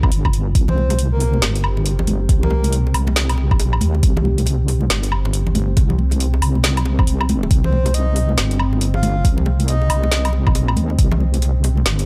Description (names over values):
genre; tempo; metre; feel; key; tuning
deep dubstep; 138 BPM; 4/4; swing 62% on 16ths, half-time; C minor; A4 = 439 Hz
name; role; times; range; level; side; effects
deep dark ambient pad; sustained chords; 0.0-12.1 s; C4 to G4; -32 LUFS; equal; chorus, built-in reverb
deep soft wobble bass; bass; 0.0-12.1 s; G1 to Eb2; -20 LUFS; equal; chorus
electronic kick drum; drums; 0.0-11.1 s; none; -18 LUFS; equal; overdrive
garage drum kit; drums; 0.0-12.1 s; hi-hat, snare drum, woodblock; -25 LUFS; equal; overdrive
breathy flute-like synth lead; melody; 0.7-2.7, 7.6-10.3 s; Bb4 to F5; -29 LUFS; equal; chorus, dub echo
bongos and congas; percussion; 0.7-12.1 s; none; -28 LUFS; equal; none
room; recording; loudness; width
digital ambience; none; -17 LUFS; mono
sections
0.0-12.1 A section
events
none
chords
0.0 C5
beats
0.12 | 0.55 0.99 1.42 1.86 | 2.29 2.73 3.16 3.60 | 4.03 4.46 4.90 5.33 | 5.77 6.20 6.64 7.07 | 7.51 7.94 8.38 8.81 | 9.25 9.68 10.12 10.55 | 10.99 11.42 11.86